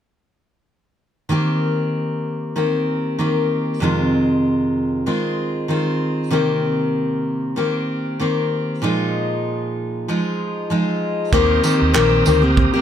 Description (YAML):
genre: acoustic pop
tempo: 96 BPM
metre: 4/4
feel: swing 55% on 16ths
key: unclear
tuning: A4 = 440 Hz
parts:
  - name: picked steel-string acoustic guitar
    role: accompaniment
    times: 1.3-12.8 s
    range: F2 to G4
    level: -18 LUFS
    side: left 1 dB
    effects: none
  - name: bright tonewheel organ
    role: sustained chords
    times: 11.3-12.8 s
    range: G4 to Eb6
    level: -25 LUFS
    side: right 3 dB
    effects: overdrive, chorus vibrato, fast rotary speaker
  - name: vintage muted fingered electric bass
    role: bass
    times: 11.3-12.7 s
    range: Bb1 to Eb2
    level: -19 LUFS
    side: right 1 dB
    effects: none
  - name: modern studio drum kit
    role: drums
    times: 11.3-12.7 s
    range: handclaps, kick drum, tambourine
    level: -20 LUFS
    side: right 3 dB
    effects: none
room: little or no reverb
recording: close, detailed microphones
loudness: -17 LUFS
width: side -9 dB against mid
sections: 1.3-11.3 A section; 11.3-12.8 B section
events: none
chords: 1.3 Eb6; 3.8 Fm7; 6.3 Cm7; 8.8 Bb7sus4; 11.3 Eb6